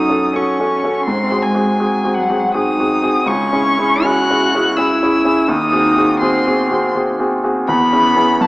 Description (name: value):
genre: classical, slow romantic movement for piano trio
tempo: 82 BPM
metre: 3/4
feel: rubato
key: C# minor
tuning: A4 = 440 Hz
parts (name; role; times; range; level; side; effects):
- rich violin; melody; 0.0-8.5 s; F#5 to F#6; -18 LUFS; left 2 dB; none
- rich cello; second line; 0.0-8.5 s; F#3 to F#4; -19 LUFS; right 1 dB; none
- clear grand piano; accompaniment; 0.0-8.5 s; C#2 to A4; -16 LUFS; equal; none
room: wet concert hall reverb, RT60 2.3 s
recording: small speaker sound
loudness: -13 LUFS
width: side -20 dB against mid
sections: 0.0-8.5 A section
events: none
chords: 0.0 F#m; 1.1 G#7; 3.3 C#m; 5.5 G#7/D#; 7.7 C#m/E